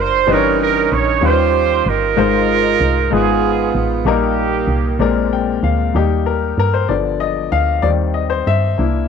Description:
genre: slow gospel.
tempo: 64 BPM (dotted quarters).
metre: 6/8.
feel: straight.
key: Eb major.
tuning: A4 = 440 Hz.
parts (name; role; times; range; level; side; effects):
mellow horn section; melody; 0.0-5.3 s; Bb3 to Db5; -16 LUFS; right 10 dB; none.
clear grand piano; accompaniment; 0.0-9.1 s; G2 to G5; -18 LUFS; left 11 dB; none.
woody FM bass; bass; 0.0-9.1 s; Gb1 to G2; -19 LUFS; right 1 dB; none.
room: moderate spring reverb, RT60 2.5 s.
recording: 1960s-style stereo with parts hard left and right.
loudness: -13 LUFS.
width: side -6 dB against mid.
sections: 0.0-6.0 A section; 6.0-9.1 B section.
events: grand piano fill 5.0-6.0; grand piano solo 6.0-9.1.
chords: 0.3 Eb7b9/G; 1.2 Eb13; 2.2 Ab6; 3.1 Abm6; 4.1 Eb/Bb; 5.0 Bb9; 6.0 Eb; 6.9 G7; 7.8 Cm/Eb.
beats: | 0.29 1.24 | 2.18 3.12 | 4.07 5.01 | 5.95 6.90 | 7.84 8.79.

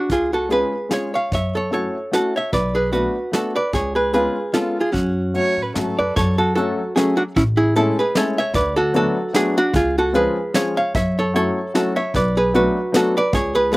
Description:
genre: musette waltz.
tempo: 150 BPM.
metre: 3/4.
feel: swing 54% on 8ths, rubato.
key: F# minor.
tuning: A4 = 438 Hz.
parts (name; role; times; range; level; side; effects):
archtop guitar, miked and amplified; melody; 0.0-13.8 s; C#4 to E#5; -19 LUFS; right 1 dB; none.
upright bass; bass; 0.1-13.8 s; A1 to A2; -24 LUFS; equal; none.
soft brush drum kit; drums; 0.1-13.8 s; hi-hat, kick drum, snare drum; -24 LUFS; equal; none.
warm upright piano; accompaniment; 0.5-13.8 s; E#3 to A4; -22 LUFS; left 2 dB; slapback echo.
warm violin; second line; 5.4-6.1 s; A4 to C#5; -24 LUFS; right 2 dB; none.
room: little or no reverb.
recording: recorded outdoors, with no room sound.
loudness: -17 LUFS.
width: side -20 dB against mid.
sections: 0.0-6.2 A section; 6.2-13.8 A section.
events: none.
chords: 0.1 C#; 1.3 F#m7; 2.5 Bm7; 3.7 C#7; 4.9 F#m; 7.4 Amaj7; 8.5 D6; 9.7 C#; 10.9 F#m7; 12.2 Bm7.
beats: | 0.10 0.51 0.91 | 1.32 1.73 2.13 | 2.54 2.94 3.34 | 3.74 4.14 4.54 | 4.94 5.35 5.76 | 6.17 6.57 6.97 | 7.37 7.76 8.16 | 8.55 8.94 9.34 | 9.74 10.14 10.54 | 10.95 11.36 11.76 | 12.15 12.55 12.95 | 13.34 13.73.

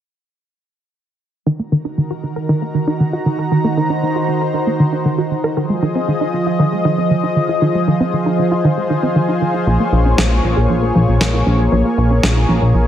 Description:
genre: synthwave.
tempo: 117 BPM.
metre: 4/4.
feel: straight.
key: unclear.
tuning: A4 = 441 Hz.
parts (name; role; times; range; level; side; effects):
analog string pad; sustained chords; 1.5-12.9 s; Eb3 to Bb5; -18 LUFS; equal; ensemble chorus.
wide unison pluck; arpeggios; 1.5-12.9 s; Eb3 to Bb4; -18 LUFS; right 1 dB; digital delay.
chorused synth bass; bass; 9.7-12.9 s; Bb1; -14 LUFS; equal; none.
electronic snare drum; drums; 10.2-12.3 s; none; -19 LUFS; equal; gated reverb.
room: moderate plate reverb, RT60 2.0 s.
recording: none.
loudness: -14 LUFS.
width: side -10 dB against mid.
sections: 1.5-12.9 A section.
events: filter sweep on analog synth pad 1.5-12.9; filter sweep on synth arpeggio sound 1.5-12.9.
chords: 1.5 Ebm; 5.6 Fm7; 9.7 Bbm7.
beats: | 1.47 1.98 2.49 3.00 | 3.52 4.03 4.54 5.05 | 5.57 6.08 6.59 7.11 | 7.62 8.13 8.64 9.16 | 9.67 10.18 10.70 11.21 | 11.72 12.23 12.75.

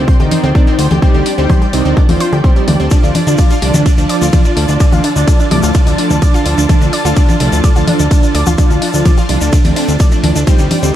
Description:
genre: melodic techno.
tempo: 127 BPM.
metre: 4/4.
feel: straight.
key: D phrygian.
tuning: A4 = 439 Hz.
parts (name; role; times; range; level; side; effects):
mellow synth brass; melody; 0.0-11.0 s; Eb3 to G4; -18 LUFS; equal; chorus, digital delay.
soft supersaw; second line; 0.0-11.0 s; A2 to G3; -22 LUFS; equal; analog chorus, sidechain pumping, tape echo.
muted studio string section; sustained chords; 0.0-11.0 s; F4 to A5; -23 LUFS; equal; sidechain pumping.
fat analog bass; bass; 0.0-10.9 s; C2 to D2; -14 LUFS; equal; sidechain pumping.
bowed-like drone; drone; 0.0-11.0 s; F3 to F4; -28 LUFS; left 2 dB; none.
analog pluck; arpeggios; 0.1-10.9 s; C4 to D5; -20 LUFS; right 2 dB; chorus, sidechain pumping, tape echo.
electronic kick drum; drums; 0.1-10.6 s; none; -10 LUFS; equal; none.
house drum kit; drums; 0.3-10.8 s; congas, hi-hat, ride cymbal; -19 LUFS; left 1 dB; none.
tube shaker; percussion; 2.9-10.9 s; none; -25 LUFS; left 5 dB; none.
room: light reverb.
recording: dark, warm production.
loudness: -9 LUFS.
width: side -12 dB against mid.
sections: 0.0-11.0 A section.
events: none.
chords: 0.0 Cmadd9; 2.9 Dm.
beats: 0.08 0.55 | 1.02 1.50 1.97 2.44 | 2.91 3.38 3.86 4.33 | 4.80 5.28 5.75 6.22 | 6.69 7.17 7.64 8.11 | 8.58 9.05 9.53 10.00 | 10.47 10.95.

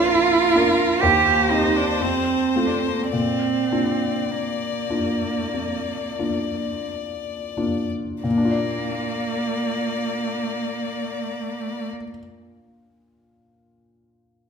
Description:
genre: classical, slow romantic movement for piano trio.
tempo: 42-64 BPM.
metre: 4/4.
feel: rubato.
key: Bb major.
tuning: A4 = 440 Hz.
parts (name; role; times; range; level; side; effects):
clear violin; melody; 0.0-11.9 s; Bb4 to D5; -28 LUFS; left 9 dB; none.
rich cello; second line; 0.0-11.9 s; Bb3 to G4; -22 LUFS; right 5 dB; none.
warm baby grand piano; accompaniment; 0.0-14.5 s; Bb1 to D5; -25 LUFS; left 2 dB; none.
room: wet recital hall reverb, RT60 1.4 s.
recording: minimal, uncompressed stereo recording.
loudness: -20 LUFS.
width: side -6 dB against mid.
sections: 0.0-8.2 A section; 8.2-13.7 B section.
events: slowing down 0.0-8.2.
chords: 0.0 Bb; 1.0 Cm/Eb; 2.0 F; 3.1 Bb.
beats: 0.08 1.02 2.01 | 3.12 4.30 5.54 6.86 | 8.24 9.59 10.96 12.31.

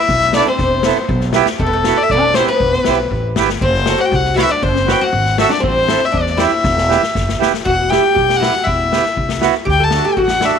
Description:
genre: klezmer.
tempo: 119 BPM.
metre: 2/4.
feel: straight.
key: E minor.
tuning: A4 = 442 Hz.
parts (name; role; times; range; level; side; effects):
rich violin; melody; 0.0-10.6 s; A4 to A5; -16 LUFS; left 3 dB; none.
oud; second line; 0.0-10.6 s; A3 to A4; -19 LUFS; equal; none.
upright bass; bass; 0.1-10.5 s; E1 to E2; -20 LUFS; right 1 dB; none.
street-band drum kit; drums; 0.1-10.5 s; kick drum, snare drum; -21 LUFS; left 4 dB; none.
accordion; accompaniment; 0.3-10.6 s; A3 to B4; -19 LUFS; right 13 dB; none.
room: light reverb.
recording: 1960s-style stereo.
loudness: -12 LUFS.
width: side -7 dB against mid.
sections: 0.0-7.7 A section; 7.7-10.6 B section.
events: drum fill 6.6-7.7.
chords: 0.0 Em; 3.6 F#dim; 5.6 Am; 6.6 Em; 9.7 D.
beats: 0.08 | 0.59 1.09 | 1.60 2.10 | 2.60 3.11 | 3.61 4.12 | 4.62 5.13 | 5.63 6.14 | 6.64 7.15 | 7.65 8.16 | 8.66 9.17 | 9.68 10.18.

